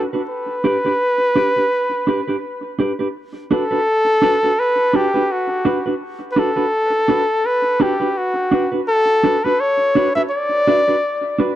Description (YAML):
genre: reggae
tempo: 84 BPM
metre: 4/4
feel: swing 57% on 16ths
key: B minor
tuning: A4 = 439 Hz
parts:
  - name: warm flugelhorn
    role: melody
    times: 0.0-11.3 s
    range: F#4 to E5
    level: -17 LUFS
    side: left 1 dB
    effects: tape echo
  - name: mellow electric guitar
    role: accompaniment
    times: 0.0-11.5 s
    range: D4 to B4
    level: -20 LUFS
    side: right 2 dB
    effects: tape echo
room: small room ambience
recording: dry, close 1970s-style studio recording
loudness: -15 LUFS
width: side -12 dB against mid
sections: 0.0-3.1 A section; 3.1-11.6 B section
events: none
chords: 0.3 G; 3.1 Bm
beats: | 0.28 1.00 1.72 2.43 | 3.15 3.87 4.58 5.30 | 6.02 6.73 7.45 8.16 | 8.88 9.60 10.31 11.03